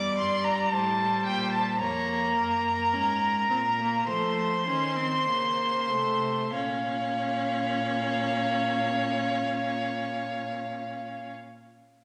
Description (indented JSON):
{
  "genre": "classical, baroque-style fugue for string quartet",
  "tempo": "46-57 BPM",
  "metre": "4/4",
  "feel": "straight",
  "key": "Bb minor",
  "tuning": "A4 = 440 Hz",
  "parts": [
    { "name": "rich violin", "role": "melody", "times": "0.0-11.3 s", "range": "F5 to D6", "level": "-30 LUFS", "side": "equal", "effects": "none" },
    { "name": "rich violin", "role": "second line", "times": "0.0-11.3 s", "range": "Bb4 to D5", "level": "-36 LUFS", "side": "equal", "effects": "none" },
    { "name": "rich viola", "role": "accompaniment", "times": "0.0-11.3 s", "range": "G3 to Db4", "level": "-35 LUFS", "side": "equal", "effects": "none" },
    { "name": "rich cello", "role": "bass", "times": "0.0-11.3 s", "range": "E2 to F3", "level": "-38 LUFS", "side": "equal", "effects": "none" }
  ],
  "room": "wet recital hall reverb, RT60 1.5 s",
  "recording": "none",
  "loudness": "-27 LUFS",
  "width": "mono",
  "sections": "0.0-6.5 A section; 6.5-11.7 B section",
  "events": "slowing down 0.0-6.5",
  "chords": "0.0 C7(no3); 1.8 Bbm/F; 4.1 F7; 6.5 Bbm"
}